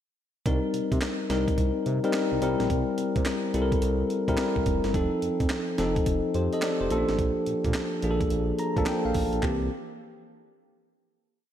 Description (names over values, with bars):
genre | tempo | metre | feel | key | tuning
R&B, new jack swing | 107 BPM | 4/4 | swing 64% on 16ths | C dorian | A4 = 441 Hz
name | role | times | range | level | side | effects
bell-like tine electric piano | accompaniment | 0.5-9.7 s | E3 to Bb5 | -26 LUFS | left 1 dB | none
smooth synth bass | bass | 0.5-9.7 s | F1 to C3 | -31 LUFS | right 1 dB | none
breakbeat sampler-style drum kit | drums | 0.5-9.6 s | handclaps, hi-hat, kick drum, snare drum | -30 LUFS | right 1 dB | none
room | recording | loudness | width
moderate lush hall reverb, RT60 1.9 s | dreamy mix soaked in reverb | -24 LUFS | side -10 dB against mid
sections
0.5-9.4 verse; 9.4-11.5 final chord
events
tine electric piano fill 8.3-9.4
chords
0.5 Cm7; 2.4 C7; 4.9 F7; 6.9 Bbmaj7; 9.4 C7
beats
| 0.46 1.02 1.58 2.14 | 2.70 3.26 3.82 4.38 | 4.94 5.50 6.07 6.62 | 7.19 7.75 8.31 8.87 | 9.43